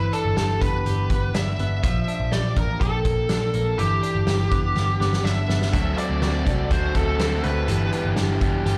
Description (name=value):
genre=jangly indie pop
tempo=123 BPM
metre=4/4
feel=straight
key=G major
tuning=A4 = 440 Hz
part: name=bluesy overdriven lead guitar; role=melody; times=0.0-8.1 s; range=G4 to E5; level=-29 LUFS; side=equal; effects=distortion, slapback echo
part: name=twelve-string electric guitar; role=arpeggios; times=0.0-8.8 s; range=E3 to G4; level=-31 LUFS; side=equal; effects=none
part: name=vintage muted picked electric bass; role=bass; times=0.0-8.8 s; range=F#1 to D2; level=-26 LUFS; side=equal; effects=none
part: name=loose indie drum kit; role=drums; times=0.1-8.8 s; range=hi-hat, kick drum, snare drum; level=-28 LUFS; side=equal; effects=none
part: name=crunchy overdriven guitar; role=accompaniment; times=5.7-8.8 s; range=G2 to G4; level=-30 LUFS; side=equal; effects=slapback echo
room=small room ambience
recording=live gig heard through the venue's PA, club reverb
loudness=-22 LUFS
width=mono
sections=0.0-8.8 A section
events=drum fill 4.8-5.7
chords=0.0 G6; 1.8 Bb6; 3.8 G6; 5.7 D7; 7.7 G6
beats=0.37 0.86 1.34 | 1.83 2.32 2.81 3.30 | 3.79 4.27 4.76 5.25 | 5.74 6.22 6.71 7.20 | 7.68 8.17 8.66